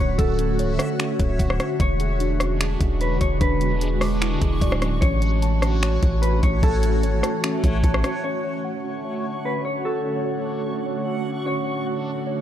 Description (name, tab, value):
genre	hip hop, atmospheric cloud-rap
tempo	149 BPM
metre	4/4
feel	half-time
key	D lydian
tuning	A4 = 440 Hz
part	mellow electric guitar	melody	0.0-12.4 s	A4 to C#5	-29 LUFS	left 2 dB	low-pass filter, tape echo
part	ethereal airy pad	sustained chords	0.0-12.4 s	D3 to C#5	-27 LUFS	right 1 dB	ensemble chorus, built-in reverb, tremolo, sidechain pumping
part	muted felt-like synth keys	arpeggios	0.0-12.4 s	B3 to D6	-31 LUFS	right 2 dB	chorus, low-pass filter, tape echo
part	long sustained 808-style bass	bass	0.0-8.0 s	C#1 to A1	-22 LUFS	equal	none
part	backwards swelling texture	texture	0.0-12.4 s	G#3 to C#6	-32 LUFS	equal	built-in reverb
part	smooth R&B drum kit	drums	0.2-8.1 s	finger snaps, hi-hat, kick drum, rim click	-24 LUFS	equal	none
room	digital ambience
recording	dry, gritty hardware recording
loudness	-20 LUFS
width	side -11 dB against mid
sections	0.0-8.2 A section; 8.2-12.4 B section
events	none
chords	0.0 Dmaj7; 1.8 E13; 5.0 A6; 8.2 Dmaj7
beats	| 0.19 0.59 0.99 1.40 | 1.80 2.20 2.60 3.01 | 3.41 3.81 4.21 4.62 | 5.02 5.42 5.83 6.23 | 6.63 7.03 7.44 7.84 | 8.24 8.64 9.05 9.45 | 9.85 10.26 10.66 11.06 | 11.46 11.87 12.27